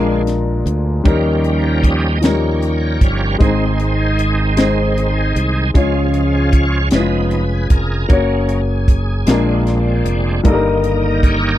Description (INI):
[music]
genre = slow gospel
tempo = 51 BPM (dotted quarters)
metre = 6/8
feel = straight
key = Db major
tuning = A4 = 441 Hz
[part]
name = warm upright piano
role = accompaniment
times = 0.0-11.6 s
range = G2 to Db5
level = -18 LUFS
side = left 3 dB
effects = none
[part]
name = bright tonewheel organ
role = sustained chords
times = 0.0-11.6 s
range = D3 to Eb5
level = -21 LUFS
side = right 3 dB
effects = slow rotary speaker, chorus vibrato
[part]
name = modern bright fingered electric bass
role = bass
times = 0.0-11.6 s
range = F1 to Eb2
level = -18 LUFS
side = right 1 dB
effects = none
[part]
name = crisp fusion drum kit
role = drums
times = 0.3-11.4 s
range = hi-hat, kick drum, snare drum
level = -13 LUFS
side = equal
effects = none
[sound]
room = little or no reverb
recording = dry, close 1970s-style studio recording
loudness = -13 LUFS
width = side -13 dB against mid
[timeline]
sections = 0.0-11.6 A section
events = tonewheel organ solo 0.0-11.6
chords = 0.0 Bb7; 1.1 Eb7; 3.4 Ab; 5.7 Db; 6.9 Db7/F; 8.1 Gb; 9.3 Bb7; 10.4 Eb/G